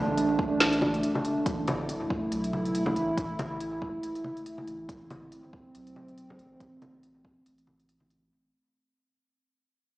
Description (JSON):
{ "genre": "deep dubstep", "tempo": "140 BPM", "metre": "4/4", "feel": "swing 56% on 16ths, half-time", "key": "A minor", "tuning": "A4 = 439 Hz", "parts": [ { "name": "dark analog pad", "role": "sustained chords", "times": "0.0-8.4 s", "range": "A3 to E4", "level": "-30 LUFS", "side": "right 1 dB", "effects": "chorus, phaser" }, { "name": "saturated sub bass", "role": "bass", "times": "0.0-8.3 s", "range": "E1 to B1", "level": "-38 LUFS", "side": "equal", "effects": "none" }, { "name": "deep house drum kit", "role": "drums", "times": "0.2-8.2 s", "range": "hi-hat, snare drum", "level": "-28 LUFS", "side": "equal", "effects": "none" }, { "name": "electronic kick drum", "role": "drums", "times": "0.4-7.3 s", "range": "none", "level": "-34 LUFS", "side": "equal", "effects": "none" }, { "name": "congas and bongos", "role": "percussion", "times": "0.8-8.1 s", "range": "none", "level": "-34 LUFS", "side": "left 1 dB", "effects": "dub echo" } ], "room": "wet echo chamber reverb, RT60 1.8 s, digital ambience", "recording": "played on a big sound system in a bare room, stone room reverb, small speaker sound", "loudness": "-27 LUFS", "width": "side -17 dB against mid", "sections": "0.0-8.3 A section", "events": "fade-out 0.0-8.3", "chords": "0.0 Am" }